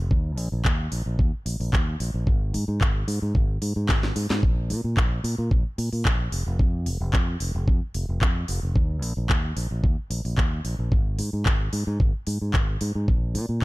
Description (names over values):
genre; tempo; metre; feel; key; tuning
nu-disco, nu disco; 111 BPM; 4/4; swing 53% on 16ths; unclear; A4 = 438 Hz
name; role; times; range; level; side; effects
fingered electric bass; bass; 0.0-13.6 s; F1 to Bb2; -26 LUFS; equal; none
electronic kick drum; drums; 0.1-13.6 s; none; -22 LUFS; equal; none
house drum kit; drums; 0.4-13.6 s; handclaps, hi-hat, snare drum; -30 LUFS; equal; none
room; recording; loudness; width
little or no reverb; dark, warm production; -22 LUFS; side -19 dB against mid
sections
0.0-13.6 A section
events
drum fill 3.9-4.4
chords
none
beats
| 0.11 0.65 1.19 1.73 | 2.27 2.81 3.35 3.89 | 4.43 4.97 5.51 6.05 | 6.59 7.13 7.67 8.21 | 8.76 9.29 9.84 10.38 | 10.92 11.46 12.00 12.54 | 13.08 13.62